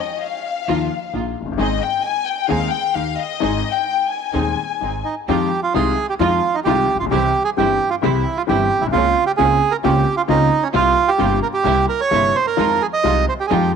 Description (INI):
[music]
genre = tango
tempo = 131 BPM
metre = 4/4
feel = rubato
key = Ab major, F minor from 5.3 s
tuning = A4 = 440 Hz
[part]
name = warm studio violin section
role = second line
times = 0.0-5.0 s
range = Eb5 to Ab5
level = -22 LUFS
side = left 9 dB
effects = none
[part]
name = warm upright piano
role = accompaniment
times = 0.7-13.7 s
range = Eb1 to Ab4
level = -22 LUFS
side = left 10 dB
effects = none
[part]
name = warm studio string section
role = stabs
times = 0.7-13.7 s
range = G3 to Ab4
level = -28 LUFS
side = right 13 dB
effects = none
[part]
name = upright bass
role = bass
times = 0.7-13.7 s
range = F1 to F2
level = -24 LUFS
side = right 3 dB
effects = none
[part]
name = bandoneon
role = melody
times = 5.0-13.7 s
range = Db4 to Eb5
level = -17 LUFS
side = right 6 dB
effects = none
[sound]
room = light reverb, small room reverb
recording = 1960s-style stereo with parts hard left and right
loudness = -16 LUFS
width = side -6 dB against mid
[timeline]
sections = 0.0-5.3 A section; 5.3-13.8 B section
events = violin section solo 0.0-5.3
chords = 0.0 Dbadd9 (rootless); 0.7 Ebsus2; 1.6 Ab; 2.5 Ab/Eb; 3.0 Eb; 3.4 Ab; 5.3 Fm7; 7.1 C; 8.9 Bbmadd9/Db; 10.7 C7sus4; 11.7 C7; 12.6 Fm7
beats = 0.22 0.68 1.14 | 1.59 2.04 2.50 2.95 | 3.41 3.87 4.34 4.81 | 5.28 5.74 6.20 6.66 | 7.12 7.58 8.04 8.49 | 8.95 9.39 9.84 10.29 | 10.74 11.20 11.65 12.12 | 12.58 13.05 13.51